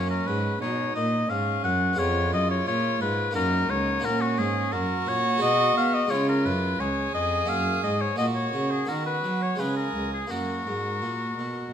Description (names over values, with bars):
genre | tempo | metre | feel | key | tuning
classical, baroque-style sonata movement with continuo | 87 BPM | 3/4 | straight | F# major from 4.0 s | A4 = 436 Hz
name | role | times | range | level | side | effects
clear oboe | melody | 0.0-11.7 s | F#4 to Gb5 | -27 LUFS | left 5 dB | none
warm violin | second line | 0.0-11.7 s | C#4 to A#4 | -31 LUFS | right 8 dB | none
harpsichord | accompaniment | 0.0-11.7 s | Db2 to Ab4 | -32 LUFS | right 1 dB | none
dark cello | bass | 0.0-11.7 s | C#2 to B3 | -28 LUFS | right 2 dB | none
room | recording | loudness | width
moderate recital hall reverb, RT60 1.9 s | close, detailed microphones | -23 LUFS | side -9 dB against mid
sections
0.0-11.7 A section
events
none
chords
0.0 Gb; 2.0 Db7/F; 3.4 Gb; 4.0 F#; 5.4 G#m7/B; 6.1 C#; 7.5 F#; 8.2 F#/A#; 8.9 B/D#; 9.6 C#; 10.3 F#